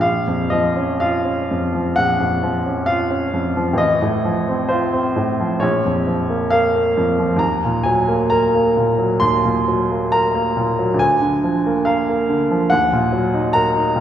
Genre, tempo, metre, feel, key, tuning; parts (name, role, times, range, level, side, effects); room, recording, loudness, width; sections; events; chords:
classical, romantic nocturne for solo piano; 66 BPM; 4/4; uneven beats, rubato; Bb minor; A4 = 437 Hz
clear upright piano; solo; 0.0-14.0 s; A1 to C6; -16 LUFS; equal
wet concert hall reverb, RT60 1.8 s; heard from further back in the room; -16 LUFS; side -10 dB against mid
0.0-14.0 A section
0.0 Bbm; 3.8 F7/A; 5.6 Bbm; 7.4 Ebm; 11.0 Bb7/D; 12.7 Ebm